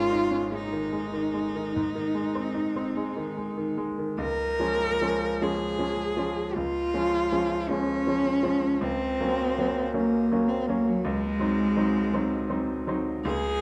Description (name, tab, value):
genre	classical, romantic duo for cello and grand piano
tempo	47-56 BPM (dotted quarters)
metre	12/8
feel	rubato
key	Db major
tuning	A4 = 439 Hz
part	rich cello	melody	0.0-13.6 s	Gb3 to Bb4	-29 LUFS	equal	none
part	bright grand piano	accompaniment	0.0-13.6 s	Ab1 to Eb4	-30 LUFS	equal	none
room	wet recital hall reverb, RT60 1.5 s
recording	dark, warm production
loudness	-27 LUFS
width	mono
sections	0.0-4.2 A section; 4.2-13.6 B section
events	none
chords	0.0 Absus4; 1.8 Ab; 4.2 Db; 8.8 Gb/Db; 11.1 Ab7/Db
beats	0.52 1.76 2.95 | 4.19 5.40 6.55 7.69 | 8.82 9.95 11.06 12.14 | 13.25